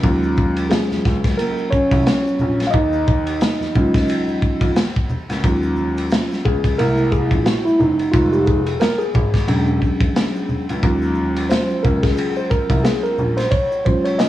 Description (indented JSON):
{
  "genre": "hip hop, jazz-hop",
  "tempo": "89 BPM",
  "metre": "4/4",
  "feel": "swing 59% on 16ths",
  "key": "Eb dorian",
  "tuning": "A4 = 440 Hz",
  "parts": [
    { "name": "mellow tine electric piano", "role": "accompaniment", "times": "0.0-14.3 s", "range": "Gb3 to F5", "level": "-19 LUFS", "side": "equal", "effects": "slow stereo tremolo" },
    { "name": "dark grand piano", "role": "bass", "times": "0.0-13.4 s", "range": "E1 to F2", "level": "-22 LUFS", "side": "equal", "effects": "none" },
    { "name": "crunchy breakbeat drum kit", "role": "drums", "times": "0.0-14.3 s", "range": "hi-hat, kick drum, ride cymbal, snare drum", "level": "-20 LUFS", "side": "equal", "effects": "none" },
    { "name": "tube shaker and congas", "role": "percussion", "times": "0.0-14.3 s", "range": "none", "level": "-29 LUFS", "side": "equal", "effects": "none" }
  ],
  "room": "light reverb, studio reverb",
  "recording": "worn, warbling old tape, cassette tape, warbly pitch drift, small room ambience",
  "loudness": "-15 LUFS",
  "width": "side -14 dB against mid",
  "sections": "0.0-5.4 A section; 5.4-14.3 B section",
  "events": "tine electric piano solo 0.0-5.4, 5.4-14.3",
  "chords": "0.0 Ebm11; 6.8 Caug7; 8.1 Fm7; 9.5 E13; 10.8 Ebm11"
}